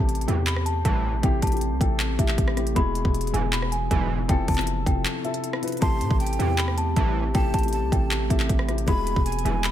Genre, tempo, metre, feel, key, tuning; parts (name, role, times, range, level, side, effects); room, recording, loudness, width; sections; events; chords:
hip hop, trap; 157 BPM; 4/4; half-time; A minor; A4 = 441 Hz
celesta; melody; 0.0-9.7 s; E5 to B5; -31 LUFS; left 1 dB; ping-pong delay
dark baby grand piano; accompaniment; 0.0-9.7 s; B2 to B4; -30 LUFS; left 6 dB
glassy FM pad; sustained chords; 0.1-9.7 s; E3 to A4; -33 LUFS; left 1 dB; ensemble chorus, built-in reverb
hard-hitting 808-style bass; bass; 0.0-9.7 s; E1 to A2; -26 LUFS; right 1 dB
trap drum kit; drums; 0.1-9.7 s; handclaps, hi-hat, kick drum, rim click; -25 LUFS; equal
sync-sweep polysynth; stabs; 0.3-9.5 s; B1 to E3; -31 LUFS; right 5 dB; chorus
breathy jazz flute; second line; 5.8-9.7 s; G5 to C6; -34 LUFS; right 7 dB; ping-pong delay
digital ambience; -21 LUFS; side -11 dB against mid
0.0-9.7 A section
break 5.1-5.8
0.0 Am7; 2.8 E; 4.3 Fmaj7; 5.8 Am7; 8.9 E